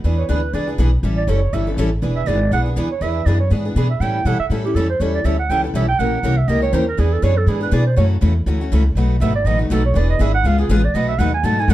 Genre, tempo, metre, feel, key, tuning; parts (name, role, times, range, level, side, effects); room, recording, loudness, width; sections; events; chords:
acoustic string swing (jazz manouche); 242 BPM; 4/4; swing 57% on 8ths; E mixolydian; A4 = 439 Hz
picked steel-string acoustic guitar; accompaniment; 0.0-11.7 s; B2 to A#4; -23 LUFS; left 4 dB
picked steel-string acoustic guitar; accompaniment; 0.0-11.7 s; B2 to B4; -27 LUFS; right 6 dB
upright bass; bass; 0.0-11.7 s; E1 to B2; -18 LUFS; equal
breathy clarinet; second line; 0.2-11.7 s; F#4 to A5; -22 LUFS; right 5 dB
light reverb; dark, warm production; -15 LUFS; side -14 dB against mid
0.1-11.7 A section
clarinet solo 0.1-11.7
0.1 E7; 1.0 A7; 2.0 E7; 4.0 A7; 6.0 A#dim7; 7.0 E7; 8.0 F#m7; 9.0 B7; 10.0 E7; 10.5 C#7; 11.0 B7